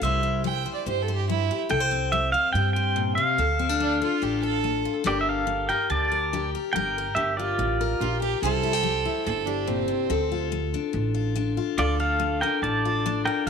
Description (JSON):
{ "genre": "honky-tonk and classic country", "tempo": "143 BPM", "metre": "4/4", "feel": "straight", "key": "unclear", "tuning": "A4 = 440 Hz", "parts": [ { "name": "pedal steel guitar", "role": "melody", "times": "0.0-8.2, 11.8-13.5 s", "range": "F4 to A5", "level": "-25 LUFS", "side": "right 1 dB", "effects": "none" }, { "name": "picked steel-string acoustic guitar", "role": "accompaniment", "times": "0.0-13.5 s", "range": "A2 to C5", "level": "-28 LUFS", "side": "left 9 dB", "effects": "none" }, { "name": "upright bass", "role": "bass", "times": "0.0-13.5 s", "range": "G1 to G2", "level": "-29 LUFS", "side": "right 2 dB", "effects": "none" }, { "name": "clear fiddle", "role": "second line", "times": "0.5-4.9, 8.0-10.5 s", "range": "C4 to G5", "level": "-29 LUFS", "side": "right 13 dB", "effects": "none" } ], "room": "light reverb, studio ambience", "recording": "1960s-style stereo with parts hard left and right", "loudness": "-22 LUFS", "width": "side -6 dB against mid", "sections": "0.0-5.1 A section; 5.1-13.5 B section", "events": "none", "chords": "0.0 C; 3.4 Dm; 5.1 Gm; 8.4 C; 10.1 Dm", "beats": "| 0.02 0.44 0.86 1.28 | 1.70 2.12 2.54 2.96 | 3.38 3.80 4.22 4.64 | 5.06 5.48 5.90 6.32 | 6.74 7.16 7.58 8.00 | 8.42 8.84 9.26 9.68 | 10.10 10.52 10.94 11.37 | 11.79 12.21 12.63 13.05 | 13.47" }